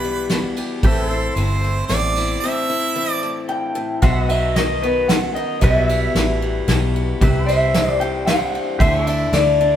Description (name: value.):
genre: honky-tonk and classic country.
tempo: 113 BPM.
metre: 3/4.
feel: straight.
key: E minor.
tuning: A4 = 440 Hz.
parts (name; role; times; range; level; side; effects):
bright harmonica; second line; 0.0-3.4 s; A4 to E5; -23 LUFS; right 4 dB; none.
picked steel-string acoustic guitar; accompaniment; 0.0-9.8 s; E2 to G4; -24 LUFS; left 4 dB; none.
pedal steel guitar; sustained chords; 0.0-9.8 s; F#4 to E5; -27 LUFS; right 1 dB; none.
vintage muted fingered electric bass; bass; 0.0-9.8 s; G1 to D2; -22 LUFS; equal; none.
soft brush drum kit; drums; 0.3-9.5 s; kick drum, ride cymbal, snare drum; -21 LUFS; equal; none.
electric guitar through a small old amp; melody; 3.5-9.8 s; B4 to G5; -20 LUFS; left 1 dB; none.
room: moderate stone room reverb, RT60 1.1 s.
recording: band playing live in one room.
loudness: -16 LUFS.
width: side -10 dB against mid.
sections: 0.0-4.0 A section; 4.0-9.8 B section.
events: harmonica solo 0.0-4.0; break 2.4-4.0.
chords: 0.0 Em; 0.8 Am; 4.0 B; 5.6 Emadd9; 7.2 C; 8.8 Dsus2.